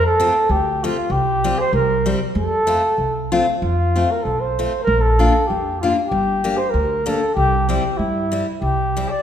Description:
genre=alpine folk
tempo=96 BPM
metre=2/4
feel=swing 55% on 8ths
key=F major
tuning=A4 = 437 Hz
part: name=mellow flugelhorn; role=melody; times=0.0-9.2 s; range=E4 to D5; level=-19 LUFS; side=equal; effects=none
part: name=upright bass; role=bass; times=0.0-9.0 s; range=G1 to G2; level=-21 LUFS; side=right 1 dB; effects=none
part: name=picked steel-string acoustic guitar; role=accompaniment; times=0.2-9.1 s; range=G3 to G4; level=-23 LUFS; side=left 3 dB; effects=none
room=moderate scoring stage reverb, RT60 1.7 s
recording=minimal, uncompressed stereo recording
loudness=-16 LUFS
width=side -9 dB against mid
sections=0.0-3.6 A section; 3.6-9.2 A section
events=none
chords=0.0 F; 1.1 Csus4; 1.7 C7; 2.3 F; 4.9 Bb; 6.1 Gm; 7.4 C

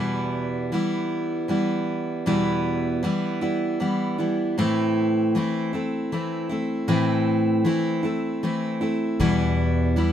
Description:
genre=acoustic folk duo or small band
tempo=78 BPM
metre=3/4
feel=straight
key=E minor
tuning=A4 = 441 Hz
part: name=picked steel-string acoustic guitar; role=accompaniment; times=0.0-10.1 s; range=E2 to E4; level=-22 LUFS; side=equal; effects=none
part: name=upright bass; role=bass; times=9.2-10.1 s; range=E2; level=-24 LUFS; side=equal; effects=none
room=moderate studio reverb, RT60 0.5 s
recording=minimal, uncompressed stereo recording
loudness=-22 LUFS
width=side -10 dB against mid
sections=0.0-10.1 A section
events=none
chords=0.0 Em; 4.6 Am; 9.2 Em

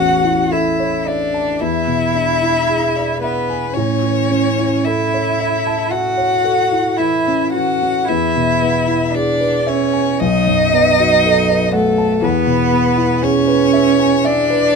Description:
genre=classical, slow romantic movement for piano trio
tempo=54-62 BPM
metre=4/4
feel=rubato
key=A major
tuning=A4 = 439 Hz
part: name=warm violin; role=melody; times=0.0-14.8 s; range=A4 to F#5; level=-18 LUFS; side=left 7 dB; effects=none
part: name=warm cello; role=second line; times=0.0-14.8 s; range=A3 to F#4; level=-18 LUFS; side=right 7 dB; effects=none
part: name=dark baby grand piano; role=accompaniment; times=0.0-14.8 s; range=A1 to A5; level=-18 LUFS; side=left 1 dB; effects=none
room=moderate studio reverb, RT60 0.9 s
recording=none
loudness=-13 LUFS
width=side -5 dB against mid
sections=0.0-14.8 A section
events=none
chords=0.0 A; 1.6 E7; 3.7 A; 8.1 E; 10.2 B7; 12.2 E

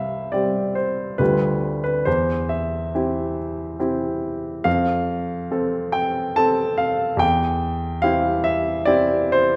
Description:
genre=classical, romantic character piece for solo piano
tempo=70 BPM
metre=3/4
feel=rubato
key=C major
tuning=A4 = 440 Hz
part: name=warm baby grand piano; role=solo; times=0.0-9.6 s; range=C2 to A5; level=-22 LUFS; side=equal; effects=none
room=wet recital hall reverb, RT60 1.5 s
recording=none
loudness=-22 LUFS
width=mono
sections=0.0-9.6 A section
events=none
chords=0.0 C5; 1.2 G7/D; 2.1 C/E; 4.7 F; 7.2 C/E

